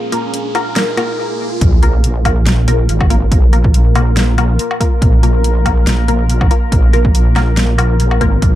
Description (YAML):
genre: deep dubstep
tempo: 141 BPM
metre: 4/4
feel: swing 54% on 16ths, half-time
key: unclear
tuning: A4 = 440 Hz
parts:
  - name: deep dark ambient pad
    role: sustained chords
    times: 0.0-8.6 s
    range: Bb3 to Bb4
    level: -22 LUFS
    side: equal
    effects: chorus, built-in reverb
  - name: riser, swell and sub drop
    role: sound effects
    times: 0.0-3.3 s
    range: none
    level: -21 LUFS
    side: right 1 dB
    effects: none
  - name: filtered dub chord stab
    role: stabs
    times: 0.1-8.6 s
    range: Bb3 to Bb4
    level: -21 LUFS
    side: left 2 dB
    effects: phaser, analog chorus, dub echo
  - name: deep house drum kit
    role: drums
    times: 0.1-8.5 s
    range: hi-hat, snare drum, woodblock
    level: -20 LUFS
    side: left 1 dB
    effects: overdrive
  - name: wobble bass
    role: bass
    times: 1.6-8.6 s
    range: Ab1 to Bb1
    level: -13 LUFS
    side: equal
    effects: chorus
  - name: electronic kick drum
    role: drums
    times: 1.6-8.5 s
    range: none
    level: -12 LUFS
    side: equal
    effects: overdrive
room: little or no reverb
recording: dark, warm production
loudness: -10 LUFS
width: side -14 dB against mid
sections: 0.0-1.6 A section; 1.6-8.6 B section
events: build-up 0.0-1.6; riser 0.0-1.6; filter sweep on synth stab 0.0-1.6; swell 0.8-1.6; break 1.2-1.6; drop 1.6-8.6; impact 1.6-3.3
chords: 0.0 Bb5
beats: 0.34 0.76 1.19 | 1.61 2.04 2.46 2.89 | 3.31 3.74 4.17 4.59 | 5.02 5.44 5.87 6.29 | 6.72 7.14 7.57 8.00 | 8.42